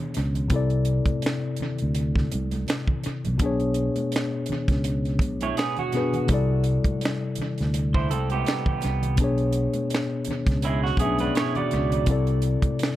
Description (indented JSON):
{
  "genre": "R&B, neo-soul",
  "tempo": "83 BPM",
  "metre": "4/4",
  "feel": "swing 57% on 16ths",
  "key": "B dorian",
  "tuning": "A4 = 438 Hz",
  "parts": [
    { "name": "tine electric piano", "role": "accompaniment", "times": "0.0-13.0 s", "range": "B2 to E5", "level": "-26 LUFS", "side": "left 3 dB", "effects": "none" },
    { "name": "tight funk drum kit", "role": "drums", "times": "0.1-13.0 s", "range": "finger snaps, hi-hat, kick drum, snare drum", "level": "-27 LUFS", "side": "right 1 dB", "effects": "tape echo" },
    { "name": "fingered electric bass", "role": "bass", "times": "0.2-12.6 s", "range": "B1 to D2", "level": "-25 LUFS", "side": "equal", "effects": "none" },
    { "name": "congas", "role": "percussion", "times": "0.4-12.8 s", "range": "none", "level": "-38 LUFS", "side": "right 3 dB", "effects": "none" },
    { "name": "electric guitar through a small old amp", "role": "second line", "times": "5.4-12.1 s", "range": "G#3 to D5", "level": "-28 LUFS", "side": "right 7 dB", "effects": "tape echo" }
  ],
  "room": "light reverb, small room ambience",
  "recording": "echo-heavy mix",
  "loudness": "-22 LUFS",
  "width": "side -14 dB against mid",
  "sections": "0.0-13.0 A section",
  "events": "none",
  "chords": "0.0 Bm69; 0.5 C69; 3.4 Bm69; 6.3 C69; 9.2 Bm69; 12.1 C69"
}